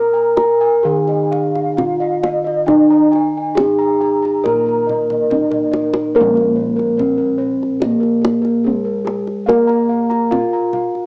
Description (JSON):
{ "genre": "Javanese gamelan", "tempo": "62-72 BPM", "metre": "4/4", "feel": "straight", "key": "Bb slendro", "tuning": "A4 = 440 Hz", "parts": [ { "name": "gamelan-type bronze metallophone", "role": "melody", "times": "0.0-11.1 s", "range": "Ab3-45c to Bb4", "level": "-16 LUFS", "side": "equal", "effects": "cassette tape" }, { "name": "gamelan-type bronze metallophone", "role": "arpeggios", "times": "0.0-6.1 s", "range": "Bb4 to Bb5", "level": "-23 LUFS", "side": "equal", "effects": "tape echo" }, { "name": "gamelan-type bossed gongs", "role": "bass", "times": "0.0-11.1 s", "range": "Bb1 to Bb4", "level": "-17 LUFS", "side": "equal", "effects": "none" }, { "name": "gamelan-type bossed gongs", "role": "arpeggios", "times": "0.1-11.0 s", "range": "Ab4-45c to Bb5", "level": "-24 LUFS", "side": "equal", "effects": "plate reverb" }, { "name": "kendang", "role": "percussion", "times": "0.4-11.1 s", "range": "none", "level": "-22 LUFS", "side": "equal", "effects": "none" } ], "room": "wet studio reverb, RT60 0.6 s", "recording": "home recording on cassette, small speaker sound", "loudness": "-13 LUFS", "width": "side -35 dB against mid", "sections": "0.0-6.2 A section; 6.2-11.1 B section", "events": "drum fill 5.1-6.2", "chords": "none" }